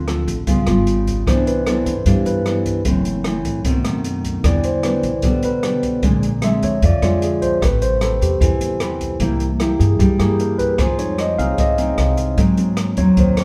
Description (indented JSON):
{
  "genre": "bossa nova",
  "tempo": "151 BPM",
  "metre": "4/4",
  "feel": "straight",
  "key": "unclear",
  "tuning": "A4 = 439 Hz",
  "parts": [
    { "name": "nylon-string guitar", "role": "accompaniment", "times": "0.0-13.4 s", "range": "F#2 to B4", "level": "-23 LUFS", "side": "equal", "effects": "none" },
    { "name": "tine electric piano", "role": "accompaniment", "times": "0.0-13.4 s", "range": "C3 to F5", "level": "-23 LUFS", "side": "equal", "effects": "none" },
    { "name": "upright bass", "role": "bass", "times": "0.0-13.4 s", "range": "F#1 to Ab2", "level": "-24 LUFS", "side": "equal", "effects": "none" },
    { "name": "open jazz drum kit", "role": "drums", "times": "0.1-13.4 s", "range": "hi-hat, kick drum, rim click", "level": "-25 LUFS", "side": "equal", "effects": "none" }
  ],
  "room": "wet studio reverb, RT60 0.8 s",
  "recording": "band playing live in one room",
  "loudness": "-18 LUFS",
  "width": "mono",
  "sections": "0.0-10.8 A section; 10.8-13.4 A section",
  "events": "tine electric piano solo 0.0-13.4",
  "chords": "0.5 C#7#11; 1.3 Cmaj9; 2.9 F#m7b5; 3.6 B7b9; 4.4 Em7; 6.0 Bb9; 7.6 Am9; 9.2 C7; 10.8 Fm7; 12.4 Ab7",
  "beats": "0.07 0.47 0.87 | 1.26 1.66 2.06 2.45 | 2.85 3.25 3.65 4.04 | 4.44 4.84 5.23 5.63 | 6.03 6.42 6.82 7.22 | 7.62 8.01 8.41 8.81 | 9.20 9.60 10.00 10.39 | 10.79 11.19 11.59 11.98 | 12.38 12.78 13.18"
}